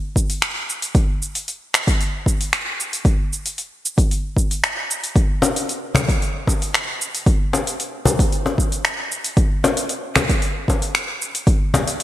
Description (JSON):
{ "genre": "downtempo", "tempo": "114 BPM", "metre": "4/4", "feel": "straight", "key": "none", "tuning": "none", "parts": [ { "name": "deep house drum kit", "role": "drums", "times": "0.2-12.0 s", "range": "cabasa, finger snaps, hi-hat", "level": "-22 LUFS", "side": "equal", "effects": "overdrive, small room reverb" }, { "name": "electronic kick drum", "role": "drums", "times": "0.2-11.6 s", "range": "none", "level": "-18 LUFS", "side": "equal", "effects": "overdrive, small room reverb" }, { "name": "cajon", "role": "percussion", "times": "5.4-11.8 s", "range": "none", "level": "-21 LUFS", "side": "left 2 dB", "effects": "none" } ], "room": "light reverb", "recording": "bright 1980s-style digital production", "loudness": "-18 LUFS", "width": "side -14 dB against mid", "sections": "0.0-12.0 A section", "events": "none", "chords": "none" }